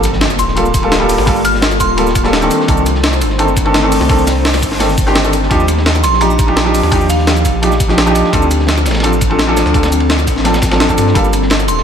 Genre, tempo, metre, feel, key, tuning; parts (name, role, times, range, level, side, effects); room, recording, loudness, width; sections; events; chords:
liquid drum and bass; 170 BPM; 4/4; straight; C dorian; A4 = 443 Hz
glassy FM pad; sustained chords; 0.0-11.8 s; F3 to C5; -18 LUFS; left 2 dB; ensemble chorus, built-in reverb
saturated sub bass; bass; 0.0-11.8 s; D1 to G2; -16 LUFS; equal
breakbeat sampler-style drum kit; drums; 0.0-11.8 s; hi-hat, shaker, snare drum; -17 LUFS; equal
crunchy breakbeat drum kit; drums; 0.0-11.8 s; hi-hat, ride cymbal, snare drum; -22 LUFS; equal; high-pass filter on cymbals, high-pass filter on hats, high-pass filter on snare, high-pass filter on room
impact; sound effects; 0.0-1.3 s; -24 LUFS; equal
glassy synth bell; melody; 0.4-2.1, 6.0-7.4, 11.7-11.8 s; F5 to F6; -20 LUFS; right 2 dB; chorus, phaser, tape echo
felt-muted upright piano; accompaniment; 0.6-11.3 s; Eb3 to A4; -15 LUFS; equal; tape echo
electronic kick drum; drums; 0.7-11.2 s; -17 LUFS; equal; overdrive
moderate plate reverb, RT60 1.6 s, small room ambience; dreamy mix soaked in reverb; -10 LUFS; side -8 dB against mid
0.0-11.8 A section
impact 0.0-1.3
0.0 Gm9; 2.5 Cm69; 5.5 Ebmaj9; 8.3 Dm7; 11.2 Gm9